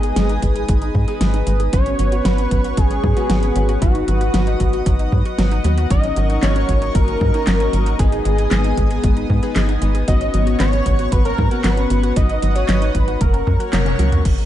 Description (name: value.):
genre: synthwave.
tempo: 115 BPM.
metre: 4/4.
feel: straight.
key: G# minor.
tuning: A4 = 440 Hz.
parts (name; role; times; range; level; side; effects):
wide unison lead; melody; 0.0-14.0 s; F#4 to D#5; -24 LUFS; equal; ping-pong delay.
chorused pulse-width pad; sustained chords; 0.0-14.5 s; G#3 to D#6; -27 LUFS; left 1 dB; sidechain pumping.
analog pluck; arpeggios; 0.0-14.2 s; F#3 to G#4; -28 LUFS; right 3 dB; chorus, ping-pong delay.
chorused polysynth; stabs; 0.0-14.2 s; A#3 to B4; -27 LUFS; left 3 dB; none.
tight sequencer bass; bass; 0.0-14.5 s; F#1 to G#2; -18 LUFS; equal; none.
pop drum kit; drums; 0.0-14.5 s; crash cymbal, handclaps, hi-hat, snare drum, toms; -24 LUFS; equal; overdrive.
electronic kick drum; drums; 0.4-14.4 s; none; -19 LUFS; equal; overdrive.
room: little or no reverb.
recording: dark, warm production, nothing above 10.7 kHz.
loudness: -15 LUFS.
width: side -12 dB against mid.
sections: 0.0-14.3 A section.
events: drum fill 13.7-14.3; band accent 13.7.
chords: 0.0 G#m; 1.7 F#sus4/G#; 3.8 B/G#; 5.9 D#m7/G#; 8.0 G#m; 10.1 F#sus4/G#; 12.2 B/G#; 13.2 F#.